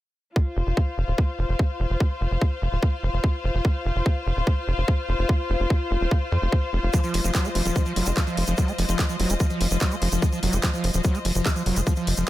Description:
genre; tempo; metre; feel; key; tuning
psychedelic trance; 146 BPM; 4/4; straight; unclear; A4 = 437 Hz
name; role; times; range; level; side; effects
electronic kick drum; drums; 0.4-11.9 s; none; -21 LUFS; equal; overdrive
rich studio string section; texture; 0.4-12.3 s; F4 to F5; -30 LUFS; left 3 dB; sidechain pumping
tight sequencer bass; bass; 0.6-12.2 s; Eb1 to F2; -24 LUFS; equal; tube saturation
screaming distorted acid line; riff; 6.9-12.2 s; F3 to A3; -27 LUFS; equal; distortion, chorus, auto-pan, sidechain pumping, tape echo
drum and bass drum kit; drums; 6.9-12.3 s; handclaps, hi-hat; -30 LUFS; equal; overdrive
tube shaker; percussion; 6.9-12.3 s; none; -35 LUFS; right 4 dB; none
room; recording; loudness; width
digital ambience; none; -21 LUFS; side -15 dB against mid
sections
0.4-12.3 A section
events
none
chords
0.4 F5

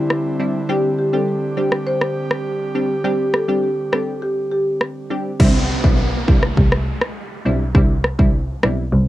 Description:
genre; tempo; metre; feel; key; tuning
dancehall; 102 BPM; 4/4; straight; C major; A4 = 440 Hz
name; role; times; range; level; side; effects
airy breathy pad; sustained chords; 0.0-5.4 s; D3 to G4; -24 LUFS; right 2 dB; chorus, sidechain pumping, cassette tape
pop drum kit; drums; 0.1-8.8 s; crash cymbal, kick drum, rim click; -16 LUFS; equal; none
wavetable chord stab; accompaniment; 0.4-8.8 s; G3 to G4; -22 LUFS; equal; cassette tape
marimba with medium mallets; melody; 0.7-4.6 s; G4 to C5; -22 LUFS; equal; cassette tape, tape echo
clear double bass; bass; 5.4-9.1 s; B1 to C2; -18 LUFS; equal; none
downlifter; sound effects; 5.4-9.1 s; none; -26 LUFS; right 1 dB; none
room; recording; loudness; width
light reverb; home recording on cassette; -16 LUFS; side -15 dB against mid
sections
0.0-5.4 A section; 5.4-9.1 B section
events
hi-hats muted 5.4-9.1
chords
0.0 Cadd9; 0.7 Gsus4; 5.4 Cadd9

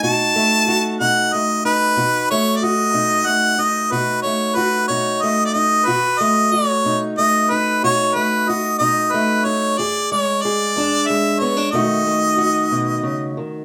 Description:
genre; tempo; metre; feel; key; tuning
acoustic country blues, solo or duo; 61 BPM (dotted quarters); 12/8; straight; unclear; A4 = 440 Hz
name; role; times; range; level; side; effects
bright harmonica; melody; 0.0-13.3 s; B4 to A5; -19 LUFS; equal; none
fingerpicked steel-string acoustic guitar; accompaniment; 0.0-13.6 s; E2 to G#4; -23 LUFS; equal; none
room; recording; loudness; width
moderate large studio reverb, RT60 0.9 s; band playing live in one room; -18 LUFS; mono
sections
0.0-13.6 A section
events
none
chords
0.0 B7; 9.8 E7; 11.7 B7

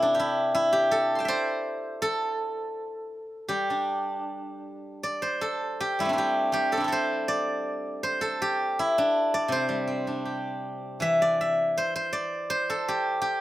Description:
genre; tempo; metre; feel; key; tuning
chinese traditional, Chinese solo plucked strings; 81 BPM; 2/4; rubato; C gong mode; A4 = 441 Hz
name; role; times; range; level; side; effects
steel-string zither; solo; 0.0-13.4 s; C3 to C6; -25 LUFS; equal; slapback echo
room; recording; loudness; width
little or no reverb; recorded outdoors, with no room sound; -24 LUFS; side -15 dB against mid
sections
0.0-11.0 A section; 11.0-13.4 B section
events
none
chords
none

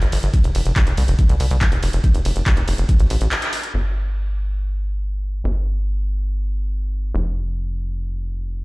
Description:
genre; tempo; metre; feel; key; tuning
psychedelic trance; 141 BPM; 4/4; straight; unclear; A4 = 442 Hz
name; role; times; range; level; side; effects
tight sequencer bass; bass; 0.0-8.6 s; F1 to C2; -20 LUFS; equal; none
techno drum kit; drums; 0.0-3.7 s; handclaps, hi-hat, ride cymbal; -26 LUFS; equal; low-pass filter on hats, low-pass filter on cymbals, low-pass filter on snare, low-pass filter on room
electronic kick drum; drums; 0.3-3.0 s; none; -15 LUFS; equal; none
room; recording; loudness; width
little or no reverb; played on a big sound system in a bare room, large studio reverb; -18 LUFS; side -24 dB against mid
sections
0.0-3.7 A section; 3.7-8.6 B section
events
drop 0.0-3.7; break 3.3-3.7; band accent 3.3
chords
none

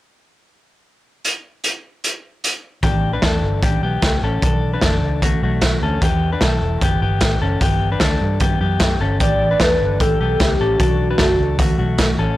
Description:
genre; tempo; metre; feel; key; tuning
jangly indie pop; 151 BPM; 4/4; straight; unclear; A4 = 440 Hz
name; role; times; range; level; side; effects
raw garage drum kit; drums; 1.2-12.1 s; hi-hat, kick drum, snare drum; -18 LUFS; equal; none
electric guitar through a small old amp; arpeggios; 2.8-12.4 s; A3 to B4; -23 LUFS; left 5 dB; digital delay
vintage muted fingered electric bass; bass; 2.8-12.4 s; E1 to G2; -21 LUFS; equal; none
warbly nostalgic lead; melody; 9.2-11.7 s; F#4 to D5; -20 LUFS; equal; chorus, tremolo
room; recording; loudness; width
little or no reverb; blown-out, overdriven recording, overdrive; -16 LUFS; side -16 dB against mid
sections
1.2-2.8 A section; 2.8-9.2 B section; 9.2-12.4 C section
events
none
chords
1.2 N.C.; 2.8 A7sus4; 4.4 Bm7; 6.0 Emadd9; 7.6 G; 9.2 A7sus4; 10.8 Bm7

